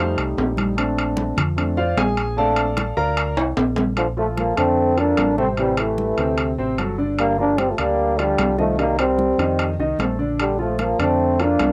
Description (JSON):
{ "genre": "Afro-Cuban jazz", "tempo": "150 BPM", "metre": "4/4", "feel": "straight", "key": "Bb major", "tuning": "A4 = 438 Hz", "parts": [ { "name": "warm grand piano", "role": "accompaniment", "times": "0.0-11.7 s", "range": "C3 to C6", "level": "-26 LUFS", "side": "equal", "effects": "cassette tape" }, { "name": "fingered electric bass", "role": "bass", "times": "0.0-11.7 s", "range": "G1 to F2", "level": "-28 LUFS", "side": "equal", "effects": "none" }, { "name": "congas", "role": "percussion", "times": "0.2-11.7 s", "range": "none", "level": "-30 LUFS", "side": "equal", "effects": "none" }, { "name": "timbales", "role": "percussion", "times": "0.2-11.7 s", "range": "none", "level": "-26 LUFS", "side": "equal", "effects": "none" }, { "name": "growling trombone", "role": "melody", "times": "4.0-11.7 s", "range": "F3 to D4", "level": "-23 LUFS", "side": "equal", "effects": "cassette tape" }, { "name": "clear trombone", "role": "second line", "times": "4.0-11.7 s", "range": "D3 to Bb3", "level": "-28 LUFS", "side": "equal", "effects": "cassette tape" } ], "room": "wet booth ambience, RT60 0.2 s", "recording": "home recording on cassette", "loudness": "-20 LUFS", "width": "mono", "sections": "0.0-4.0 A section; 4.0-11.7 B section", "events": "grand piano solo 0.0-4.0; drum fill 3.4-4.0", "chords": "0.0 F7; 0.8 Bbmaj9; 5.6 Am7; 6.4 D7; 7.2 Gm7; 8.8 Cm7; 9.6 Bbmaj7" }